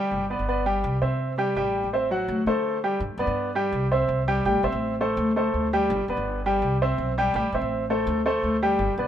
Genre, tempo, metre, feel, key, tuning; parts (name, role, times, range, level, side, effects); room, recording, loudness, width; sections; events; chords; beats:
latin, Cuban son and guajira; 166 BPM; 4/4; straight; G major; A4 = 440 Hz
clear baby grand piano; arpeggios; 0.0-9.1 s; F#3 to G5; -23 LUFS; equal
upright bass; bass; 0.0-9.1 s; G1 to D3; -28 LUFS; equal
light reverb; minimal, uncompressed stereo recording; -22 LUFS; side -10 dB against mid
0.0-3.0 A section; 3.0-9.1 B section
0.1 G; 0.8 C; 1.6 Am7; 2.3 D7; 3.0 G; 3.7 C; 4.5 Am7; 5.2 D5; 5.9 G; 6.6 C; 7.3 Am7; 8.1 D5
| 0.12 0.48 0.84 1.20 | 1.57 1.93 2.29 2.65 | 3.01 3.37 3.73 4.10 | 4.46 4.82 5.18 5.54 | 5.90 6.26 6.62 6.99 | 7.35 7.71 8.07 8.43 | 8.79